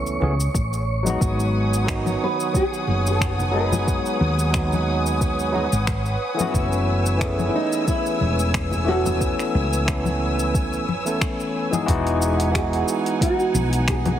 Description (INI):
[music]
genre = sunset chillout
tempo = 90 BPM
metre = 4/4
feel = swing 54% on 16ths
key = unclear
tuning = A4 = 441 Hz
[part]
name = barky tine electric piano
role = accompaniment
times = 0.0-14.2 s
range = D#3 to A4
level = -25 LUFS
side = moving between left 4 dB and right 4 dB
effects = overdrive, auto-pan, low-pass filter, ping-pong delay
[part]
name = woody fretless electric bass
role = bass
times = 0.0-14.2 s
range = E1 to D#2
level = -23 LUFS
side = equal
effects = none
[part]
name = wind-like tuned noise texture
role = texture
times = 0.0-11.9 s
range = C#5 to C#6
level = -34 LUFS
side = right 4 dB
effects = built-in reverb
[part]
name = smooth R&B drum kit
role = drums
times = 0.1-14.2 s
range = finger snaps, hi-hat, shaker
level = -29 LUFS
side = equal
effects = overdrive
[part]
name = congas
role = percussion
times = 0.2-14.2 s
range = none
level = -28 LUFS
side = left 4 dB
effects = none
[part]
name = electronic kick drum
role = drums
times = 0.5-14.0 s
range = none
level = -24 LUFS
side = equal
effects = overdrive
[part]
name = dark studio string section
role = sustained chords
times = 1.2-14.2 s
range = D#4 to E6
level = -28 LUFS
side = equal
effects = none
[part]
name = nylon-string guitar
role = melody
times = 2.2-14.2 s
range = D#4 to B4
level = -26 LUFS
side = right 1 dB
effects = ping-pong delay
[sound]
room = light reverb, digital ambience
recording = heavily compressed radio sound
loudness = -19 LUFS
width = side -10 dB against mid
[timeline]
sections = 0.0-11.9 A section; 11.9-14.2 B section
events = none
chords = 0.0 Eadd9; 1.2 G#m7; 6.5 Emaj9